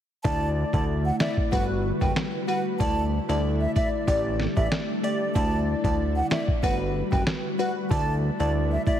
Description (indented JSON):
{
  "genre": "dancehall",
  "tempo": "94 BPM",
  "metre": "4/4",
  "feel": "straight",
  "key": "D major",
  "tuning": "A4 = 440 Hz",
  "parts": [
    { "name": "breathy mellow wooden flute", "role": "melody", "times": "0.2-9.0 s", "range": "D5 to A5", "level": "-31 LUFS", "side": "right 2 dB", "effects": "ping-pong delay" },
    { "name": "glassy wavetable pluck", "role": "accompaniment", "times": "0.2-9.0 s", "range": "G3 to D5", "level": "-28 LUFS", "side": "left 2 dB", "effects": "chorus" },
    { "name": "ethereal airy pad", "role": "sustained chords", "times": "0.7-9.0 s", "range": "D3 to B4", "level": "-32 LUFS", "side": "equal", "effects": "ensemble chorus, built-in reverb, sidechain pumping" },
    { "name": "fat analog bass", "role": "bass", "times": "0.2-8.8 s", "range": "F#1 to D2", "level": "-26 LUFS", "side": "equal", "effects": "none" },
    { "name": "lo-fi sampler-style drum kit", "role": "drums", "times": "0.2-9.0 s", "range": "handclaps, kick drum, snare drum", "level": "-27 LUFS", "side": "equal", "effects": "none" }
  ],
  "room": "moderate lush hall reverb, RT60 2.1 s",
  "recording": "heavily compressed radio sound, multiband compression",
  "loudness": "-22 LUFS",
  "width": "side -10 dB against mid",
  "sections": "0.2-9.0 A section",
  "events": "none",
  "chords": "0.2 Dsus2; 1.5 Gmaj7; 2.8 Dsus2; 4.1 A7sus4; 5.4 Dsus2; 6.6 Gmaj7; 7.9 Dsus2",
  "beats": "| 0.25 0.89 1.52 2.16 | 2.80 3.44 4.08 4.71 | 5.35 5.99 6.63 7.27 | 7.91 8.54"
}